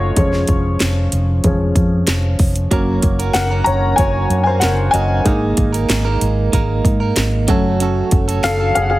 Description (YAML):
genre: piano-driven pop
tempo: 94 BPM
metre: 4/4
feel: straight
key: Db major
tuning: A4 = 440 Hz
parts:
  - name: warm upright piano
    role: accompaniment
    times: 0.0-9.0 s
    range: F3 to Bb5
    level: -18 LUFS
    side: left 2 dB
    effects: none
  - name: vintage muted fingered electric bass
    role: bass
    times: 0.0-9.0 s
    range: F1 to Ab2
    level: -18 LUFS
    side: equal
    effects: none
  - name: house drum kit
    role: drums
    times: 0.2-8.9 s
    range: hi-hat, kick drum, snare drum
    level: -18 LUFS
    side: equal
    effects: none
  - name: direct-recorded clean electric guitar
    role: riff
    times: 2.7-9.0 s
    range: Gb3 to Bb4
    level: -22 LUFS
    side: right 6 dB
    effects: tremolo
room: light reverb, digital ambience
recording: heavily compressed radio sound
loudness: -13 LUFS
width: side -17 dB against mid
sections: 0.0-9.0 A section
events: upright piano solo 0.0-9.0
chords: 0.2 Db/F; 2.7 Gb; 5.3 Absus2; 7.5 Gbm